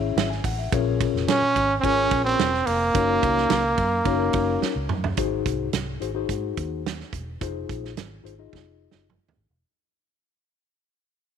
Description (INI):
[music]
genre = uptempo 1960s-style soul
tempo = 108 BPM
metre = 4/4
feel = straight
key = Ab mixolydian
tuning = A4 = 441 Hz
[part]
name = mellow tine electric piano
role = accompaniment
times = 0.0-9.1 s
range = Ab2 to Ab5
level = -28 LUFS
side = left 13 dB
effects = medium stereo tremolo
[part]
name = vintage muted fingered electric bass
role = bass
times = 0.0-9.6 s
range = Fb1 to Ab2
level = -30 LUFS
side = equal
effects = none
[part]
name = natural country drum kit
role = drums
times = 0.2-9.4 s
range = hi-hat, kick drum, ride cymbal, snare drum, toms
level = -28 LUFS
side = right 6 dB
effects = none
[part]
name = breathy trumpet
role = melody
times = 1.3-4.6 s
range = Bb3 to Db4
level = -21 LUFS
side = right 2 dB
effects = none
[sound]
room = moderate echo chamber reverb, RT60 2.4 s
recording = 1960s-style stereo with parts hard left and right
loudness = -21 LUFS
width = side -8 dB against mid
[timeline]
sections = 0.0-5.2 A section; 5.2-9.6 B section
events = drum fill 4.6-5.2, 8.5-9.6; fade-out 5.2-9.6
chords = 0.0 Dbm/Ab; 0.7 Bbm7; 2.9 Gb6; 5.2 Ab7; 7.4 Fm7